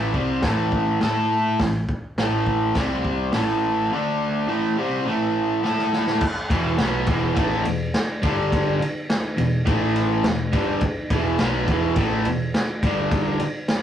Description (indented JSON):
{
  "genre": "garage rock duo or trio",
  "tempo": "104 BPM",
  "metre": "4/4",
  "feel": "straight",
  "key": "unclear",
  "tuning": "A4 = 441 Hz",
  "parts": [
    { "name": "crunchy overdriven guitar", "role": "riff", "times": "0.0-13.4 s", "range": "E2 to A4", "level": "-21 LUFS", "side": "equal", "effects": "none" },
    { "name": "overdriven picked electric bass", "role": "bass", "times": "0.0-13.4 s", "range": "E1 to A2", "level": "-29 LUFS", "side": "equal", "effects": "none" },
    { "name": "vintage drum kit", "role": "drums", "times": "0.1-13.8 s", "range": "crash cymbal, hi-hat, kick drum, ride cymbal, snare drum", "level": "-24 LUFS", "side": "equal", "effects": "none" }
  ],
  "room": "wet studio reverb, RT60 0.6 s",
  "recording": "rough rehearsal-room recording, warm saturation",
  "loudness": "-20 LUFS",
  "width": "side -10 dB against mid",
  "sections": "0.0-6.2 A section; 6.2-13.8 B section",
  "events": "drum fill 5.6-6.2",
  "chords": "0.0 A5; 2.8 C5; 3.3 A5; 3.9 D5; 4.5 A5; 6.2 E5; 8.2 G5; 8.8 E5; 9.7 A5; 10.2 E5; 12.8 G5"
}